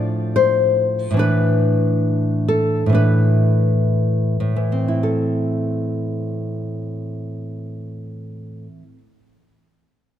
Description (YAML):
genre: romantic piece for solo classical guitar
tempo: 53-74 BPM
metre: 4/4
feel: rubato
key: A minor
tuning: A4 = 440 Hz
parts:
  - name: nylon-string guitar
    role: solo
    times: 0.0-9.3 s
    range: A2 to D5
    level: -17 LUFS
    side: equal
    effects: none
room: moderate concert hall reverb, RT60 2.1 s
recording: close, detailed microphones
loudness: -16 LUFS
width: side -10 dB against mid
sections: 0.0-5.0 A section; 5.0-9.1 B section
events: slowing down 0.0-5.0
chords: 0.0 Dm/A; 1.2 E5/A; 5.0 Am